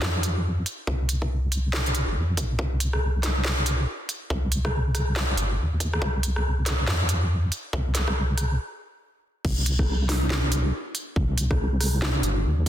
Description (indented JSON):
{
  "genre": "deep dubstep",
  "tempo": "140 BPM",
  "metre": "4/4",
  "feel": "swing 61% on 16ths, half-time",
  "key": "C minor",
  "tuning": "A4 = 441 Hz",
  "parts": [
    { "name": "deep soft wobble bass", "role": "bass", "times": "0.0-12.7 s", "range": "G1 to F2", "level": "-24 LUFS", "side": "equal", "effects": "chorus" },
    { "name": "garage drum kit", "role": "drums", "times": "0.0-12.7 s", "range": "crash cymbal, hi-hat, rim click, snare drum", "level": "-28 LUFS", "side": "equal", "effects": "high-pass filter on snare, high-pass filter on hats, high-pass filter on cymbals, high-pass filter on room" },
    { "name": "electronic kick drum", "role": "drums", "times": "0.9-12.7 s", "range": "none", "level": "-30 LUFS", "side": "equal", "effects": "high-pass filter on kick, high-pass filter on room" }
  ],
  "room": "little or no reverb",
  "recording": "dense, heavily limited modern master",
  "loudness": "-23 LUFS",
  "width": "side -11 dB against mid",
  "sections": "0.0-9.4 A section; 9.4-12.7 B section",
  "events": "build-up 0.0-9.4; stop 8.6-9.4; drop 9.4-12.7",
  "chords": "none"
}